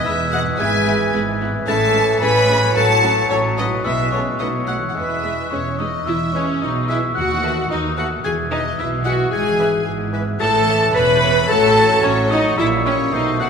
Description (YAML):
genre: cinematic, playful, whimsical film cue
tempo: 110 BPM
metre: 2/4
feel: straight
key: E major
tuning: A4 = 440 Hz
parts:
  - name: glockenspiel with rubber mallets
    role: melody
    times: 0.0-13.5 s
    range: C#6 to B6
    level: -24 LUFS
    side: left 3 dB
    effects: none
  - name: clear clarinet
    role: second line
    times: 0.0-13.5 s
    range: B4 to C#5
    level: -29 LUFS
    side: left 1 dB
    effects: none
  - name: silver concert flute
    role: second line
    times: 0.0-13.5 s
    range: A4 to B5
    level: -26 LUFS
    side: equal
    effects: none
  - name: warm studio violin section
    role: second line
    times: 0.0-13.5 s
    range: B4 to B5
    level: -24 LUFS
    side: equal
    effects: none
  - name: clear bassoon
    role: accompaniment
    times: 0.0-13.5 s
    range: E3 to A3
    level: -28 LUFS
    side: right 1 dB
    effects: none
  - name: warm French horn section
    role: sustained chords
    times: 0.0-13.5 s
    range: C#4 to B4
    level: -23 LUFS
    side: left 2 dB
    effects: none
  - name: concert harp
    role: arpeggios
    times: 0.0-13.5 s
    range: G#2 to B4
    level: -28 LUFS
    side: left 3 dB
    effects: none
  - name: warm studio violin section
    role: melody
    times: 0.1-13.5 s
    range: E4 to B5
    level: -29 LUFS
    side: left 2 dB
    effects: none
  - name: rich studio viola section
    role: accompaniment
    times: 0.1-13.5 s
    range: F#3 to B4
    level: -23 LUFS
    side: right 2 dB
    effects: none
  - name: warm studio cello section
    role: bass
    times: 0.1-13.5 s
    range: D#2 to B2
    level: -25 LUFS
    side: right 3 dB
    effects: none
  - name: warm studio double bass section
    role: bass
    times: 0.1-13.5 s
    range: E1 to D#2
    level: -28 LUFS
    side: right 4 dB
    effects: none
room: wet scoring stage reverb, RT60 2.0 s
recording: minimal, uncompressed stereo recording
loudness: -15 LUFS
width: side -6 dB against mid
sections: 0.0-6.1 A section; 6.1-13.5 A section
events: none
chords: 0.0 E; 0.6 E/G#; 1.7 Amaj7; 2.8 F#m/A; 3.9 E/B; 4.4 B9; 5.0 E; 7.2 B7/D#; 8.2 E; 9.3 E/G#; 10.4 Amaj7; 11.5 F#m/A; 12.6 A#dim7